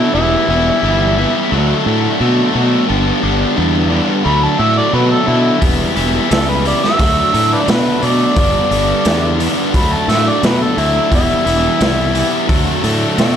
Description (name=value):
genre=blues rock power trio and southern rock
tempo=88 BPM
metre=4/4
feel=straight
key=unclear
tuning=A4 = 439 Hz
part: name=overdriven harmonica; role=melody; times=0.0-12.5 s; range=E4 to B5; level=-17 LUFS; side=equal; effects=none
part: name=cranked stack guitar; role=riff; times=0.0-13.4 s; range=G2 to E4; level=-16 LUFS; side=left 1 dB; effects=overdrive
part: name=fuzz fingered electric bass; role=bass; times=0.1-13.4 s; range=E1 to B2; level=-17 LUFS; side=equal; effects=overdrive
part: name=raw garage drum kit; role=drums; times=5.6-13.3 s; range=hi-hat, kick drum, snare drum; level=-18 LUFS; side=equal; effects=none
room=light reverb, small room ambience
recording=none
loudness=-11 LUFS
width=side -8 dB against mid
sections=0.0-13.4 A section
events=none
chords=0.1 Em; 1.5 D; 2.9 G; 4.3 D; 5.6 Em; 7.0 D; 8.4 G; 9.7 D; 11.1 Em; 12.5 D